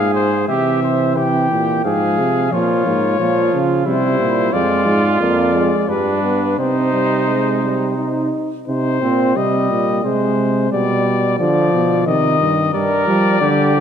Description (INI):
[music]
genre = classical, imitative canzona for brass ensemble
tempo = 88 BPM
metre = 3/4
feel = straight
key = C minor from 4.5 s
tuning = A4 = 439 Hz
[part]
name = warm cornet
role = melody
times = 0.0-13.8 s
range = B4 to G5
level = -20 LUFS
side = left 6 dB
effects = none
[part]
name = mellow trumpet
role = second line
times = 0.0-8.3, 12.7-13.8 s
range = D4 to C5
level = -21 LUFS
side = right 4 dB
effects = none
[part]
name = dark euphonium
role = bass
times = 0.0-13.8 s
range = F2 to G3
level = -19 LUFS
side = right 2 dB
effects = none
[part]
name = warm trombone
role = accompaniment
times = 0.5-13.8 s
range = Eb3 to Eb4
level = -19 LUFS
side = right 1 dB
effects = none
[sound]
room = wet concert hall reverb, RT60 1.9 s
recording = none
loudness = -14 LUFS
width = side -8 dB against mid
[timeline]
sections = 0.5-8.7 A section; 8.7-13.8 B section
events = none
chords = 0.5 C; 1.8 Fm/Ab; 2.5 Bbm; 3.9 C; 4.5 Ddim/F; 5.9 G; 6.6 Cm; 10.0 Ab/C; 10.7 G/B; 12.1 Cm; 12.7 Gm